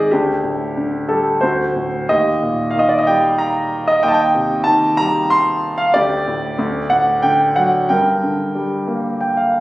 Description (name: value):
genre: classical, lyrical solo piano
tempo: 92 BPM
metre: 3/4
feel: rubato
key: unclear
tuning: A4 = 440 Hz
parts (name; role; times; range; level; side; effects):
- warm concert grand piano; solo; 0.0-9.6 s; D2 to C6; -14 LUFS; equal; none
room: moderate recital hall reverb, RT60 1.5 s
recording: recorded on a phone in the room, studio reverb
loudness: -14 LUFS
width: side -17 dB against mid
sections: 0.0-9.6 A section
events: grand piano fill 8.9-9.6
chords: 0.1 Dsus4; 1.4 D; 2.1 Eb; 4.0 Cm/Eb; 5.9 Dsus4; 6.6 D; 7.9 Gm